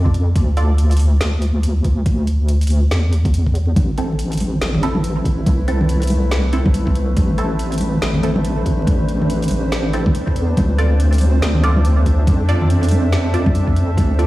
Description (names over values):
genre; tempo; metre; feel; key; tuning
deep dubstep; 141 BPM; 4/4; swing 60% on 16ths, half-time; A minor; A4 = 441 Hz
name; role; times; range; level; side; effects
deep soft wobble bass; bass; 0.0-14.3 s; A1 to F2; -16 LUFS; equal; chorus
electronic kick drum; drums; 0.1-14.1 s; none; -18 LUFS; equal; overdrive
garage drum kit; drums; 0.1-14.3 s; hi-hat, snare drum; -28 LUFS; equal; overdrive
filtered dub chord stab; stabs; 0.6-0.7, 4.0-14.3 s; C4 to D5; -27 LUFS; right 2 dB; phaser, analog chorus, dub echo
deep dark ambient pad; sustained chords; 4.2-14.3 s; A3 to E5; -26 LUFS; left 1 dB; chorus, built-in reverb
congas; percussion; 3.8-14.1 s; none; -23 LUFS; equal; dub echo
flickering grainy texture; texture; 4.2-14.3 s; C4; -28 LUFS; right 2 dB; built-in reverb
room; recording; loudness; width
light reverb, digital ambience; played on a big sound system in a bare room, stone room reverb, vinyl crackle; -14 LUFS; side -17 dB against mid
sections
0.0-14.3 A section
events
none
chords
0.0 Dm; 3.8 Am; 10.6 Dm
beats
| 0.36 0.79 1.21 1.64 | 2.06 2.49 2.91 3.34 | 3.76 4.19 4.62 5.04 | 5.47 5.89 6.32 6.74 | 7.17 7.59 8.02 8.45 | 8.87 9.30 9.72 10.15 | 10.57 11.00 11.42 11.85 | 12.27 12.70 13.12 13.55 | 13.98